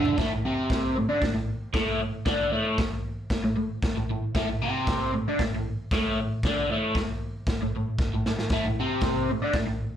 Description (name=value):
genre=garage rock duo or trio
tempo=115 BPM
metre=4/4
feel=straight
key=unclear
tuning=A4 = 439 Hz
part: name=crunchy overdriven guitar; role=riff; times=0.0-9.9 s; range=A2 to D4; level=-26 LUFS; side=equal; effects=phaser, slapback echo
part: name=raw garage drum kit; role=drums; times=0.0-9.7 s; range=hi-hat, kick drum, snare drum, toms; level=-28 LUFS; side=equal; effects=none
room=light reverb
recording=live gig heard through the venue's PA, club ambience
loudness=-24 LUFS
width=side -9 dB against mid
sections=0.2-10.0 A section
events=drum fill 0.0, 8.0-8.5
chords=0.2 Gsus4 (rootless)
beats=| 0.20 0.71 1.24 1.76 | 2.28 2.80 3.32 3.84 | 4.36 4.88 5.40 5.92 | 6.44 6.96 7.48 8.00 | 8.52 9.04 9.56